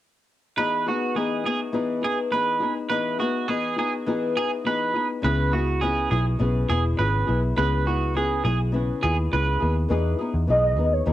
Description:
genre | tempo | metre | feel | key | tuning
indie pop, bedroom pop | 103 BPM | 4/4 | straight | E major | A4 = 437 Hz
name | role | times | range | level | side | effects
clean electric guitar | second line | 0.6-9.7 s | F#4 to B4 | -26 LUFS | right 4 dB | lush chorus, cassette tape, tape echo
flamenco guitar | accompaniment | 0.6-11.1 s | C#3 to G#4 | -26 LUFS | left 4 dB | analog chorus, warbly pitch drift, cassette tape
vintage muted picked electric bass | bass | 5.2-11.1 s | E1 to E2 | -23 LUFS | equal | none
warm velvety synth lead | melody | 10.5-11.1 s | B4 to D#5 | -21 LUFS | right 1 dB | ensemble chorus, cassette tape
room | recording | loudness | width
light reverb, digital ambience | home recording on cassette | -21 LUFS | side -13 dB against mid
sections
0.6-9.9 A section; 9.9-11.1 B section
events
none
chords
0.6 Emaj7; 5.2 C#m7; 9.9 Emaj7

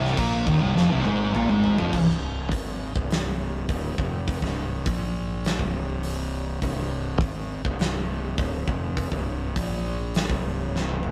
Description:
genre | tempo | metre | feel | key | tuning
stoner and doom metal | 102 BPM | 4/4 | straight | C minor | A4 = 439 Hz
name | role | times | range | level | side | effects
thick fuzz guitar | riff | 0.0-1.9 s | C2 to Bb3 | -28 LUFS | equal | distortion
thick fuzz guitar | riff | 0.0-1.9 s | C2 to Bb3 | -24 LUFS | equal | distortion
fuzz fingered electric bass | bass | 0.0-11.1 s | C1 to Bb1 | -30 LUFS | equal | overdrive
big rock drum kit | drums | 0.0-11.1 s | crash cymbal, hi-hat, kick drum, snare drum, toms | -31 LUFS | equal | none
room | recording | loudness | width
light reverb | rough rehearsal-room recording | -26 LUFS | mono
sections
0.0-1.9 A section; 1.9-11.1 B section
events
drum fill 0.8-1.9, 10.7-11.1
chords
0.0 Cm; 1.9 N.C.

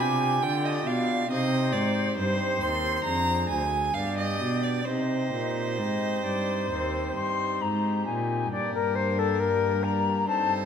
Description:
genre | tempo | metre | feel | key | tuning
classical, baroque-style sonata movement with continuo | 68 BPM | 4/4 | straight | C minor | A4 = 441 Hz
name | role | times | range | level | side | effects
silver concert flute | melody | 0.0-10.5 s | G4 to C6 | -29 LUFS | left 6 dB | none
rich violin | second line | 0.0-10.7 s | Bb4 to C6 | -30 LUFS | right 4 dB | none
pipe organ, cornet | accompaniment | 0.0-10.7 s | D2 to A4 | -31 LUFS | left 1 dB | none
rich cello | bass | 0.0-10.7 s | D2 to D3 | -30 LUFS | right 1 dB | none
room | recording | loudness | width
wet scoring stage reverb, RT60 1.6 s | none | -24 LUFS | side -7 dB against mid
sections
0.0-8.5 A section; 8.5-10.7 A section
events
none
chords
0.0 G7; 1.3 Cm; 3.1 Ddim/F; 4.0 G; 4.9 Cm; 8.5 Gm

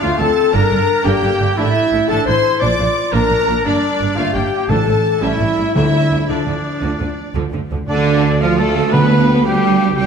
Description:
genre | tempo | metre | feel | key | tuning
cinematic, heroic adventure film score | 115 BPM (dotted quarters) | 12/8 | straight | D minor | A4 = 438 Hz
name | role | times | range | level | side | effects
rich symphonic violin section | melody | 0.0-10.1 s | D5 to D6 | -25 LUFS | left 1 dB | none
clear oboe | second line | 0.0-10.1 s | D4 to B5 | -28 LUFS | right 1 dB | none
rich symphonic violin section | second line | 0.0-10.1 s | B3 to D6 | -27 LUFS | left 3 dB | none
warm clarinet | second line | 0.0-7.3 s | F3 to F4 | -26 LUFS | right 1 dB | none
rich symphonic viola section | accompaniment | 0.0-10.1 s | D3 to B4 | -25 LUFS | right 2 dB | none
mellow French horn section | sustained chords | 0.0-10.1 s | D3 to D5 | -20 LUFS | left 5 dB | none
clear trumpet section | stabs | 0.0-10.1 s | D4 to D5 | -22 LUFS | right 1 dB | none
rich symphonic cello section | bass | 0.0-10.1 s | D2 to B3 | -20 LUFS | right 4 dB | none
rich symphonic double bass section | bass | 0.0-10.1 s | G1 to D2 | -22 LUFS | right 4 dB | none
timpani | percussion | 4.7-9.4 s | A2 to D3 | -19 LUFS | equal | none
concert flute | second line | 7.9-10.1 s | D5 to B5 | -26 LUFS | left 3 dB | none
mellow tuba | bass | 7.9-10.1 s | C2 to D2 | -21 LUFS | right 5 dB | none
room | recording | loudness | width
wet scoring stage reverb, RT60 2.0 s | none | -13 LUFS | side -6 dB against mid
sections
0.0-7.9 A section; 7.9-10.1 B section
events
none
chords
0.0 Dm; 0.5 Gm; 1.6 Asus4; 2.6 Bb; 3.7 Gm; 4.7 Dm/A; 5.2 A7; 5.8 Dm; 8.9 G7/D

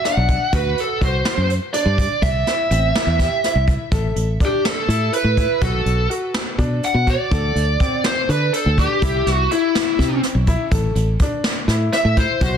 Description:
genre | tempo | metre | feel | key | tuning
progressive instrumental, band music in an uneven meter | 247 BPM (eighths) | 7/8 | straight | unclear | A4 = 440 Hz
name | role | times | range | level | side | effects
bluesy overdriven lead guitar | melody | 0.0-12.6 s | E4 to F#5 | -20 LUFS | right 1 dB | distortion, ping-pong delay
vintage brush drum kit | drums | 0.0-12.5 s | hi-hat, kick drum, snare drum | -22 LUFS | equal | soft clipping on snare
clear grand piano | arpeggios | 0.1-12.6 s | C4 to A4 | -27 LUFS | left 2 dB | plate reverb
fingered electric bass | bass | 0.2-12.6 s | A1 to D3 | -19 LUFS | equal | none
room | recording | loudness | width
light reverb | dense, heavily limited modern master | -16 LUFS | side -8 dB against mid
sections
0.0-3.9 A section; 3.9-12.6 B section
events
lead electric guitar solo 3.9-12.6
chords
0.0 Bm; 0.5 D7; 2.2 C; 3.9 A5; 5.6 Bm7; 7.3 D5; 9.0 C; 10.7 A5

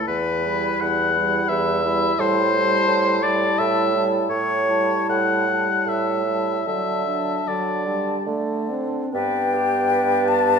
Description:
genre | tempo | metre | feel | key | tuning
classical, slow romantic movement for wind quintet | 65-91 BPM | 3/4 | rubato | G major | A4 = 441 Hz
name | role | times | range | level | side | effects
mellow hollow silver concert flute | melody | 0.0-10.6 s | D5 to B5 | -26 LUFS | left 8 dB | none
clear oboe | second line | 0.0-10.6 s | D4 to F#5 | -22 LUFS | left 3 dB | none
dark clarinet | accompaniment | 0.0-10.6 s | D4 to B4 | -29 LUFS | right 9 dB | none
warm French horn | accompaniment | 0.0-10.6 s | F#3 to C4 | -29 LUFS | equal | none
mellow bassoon | bass | 0.1-10.6 s | E2 to D3 | -24 LUFS | right 4 dB | none
room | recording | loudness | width
wet recital hall reverb, RT60 1.7 s | minimal, uncompressed stereo recording | -18 LUFS | side -6 dB against mid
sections
0.0-9.1 A section; 9.1-10.6 B section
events
none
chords
0.1 Em; 2.2 Am7; 6.7 D; 9.1 G

